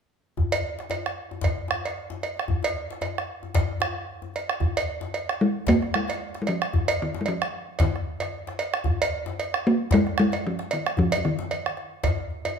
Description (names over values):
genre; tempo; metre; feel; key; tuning
west african traditional, West African drum ensemble; 113 BPM; 4/4; swing 56% on 16ths; unclear; A4 = 436 Hz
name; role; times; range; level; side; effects
bombo; percussion; 0.4-12.2 s; none; -27 LUFS; right 2 dB; none
djembe; percussion; 0.4-12.6 s; none; -32 LUFS; left 6 dB; none
cowbell; percussion; 0.5-12.6 s; none; -29 LUFS; right 3 dB; none
talking drum; melody; 5.4-12.6 s; Eb3 to Bb3; -24 LUFS; left 1 dB; none
room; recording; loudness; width
wet large studio reverb, RT60 1.2 s; band playing live in one room; -24 LUFS; side -6 dB against mid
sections
0.4-4.6 A section; 4.6-12.6 B section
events
none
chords
none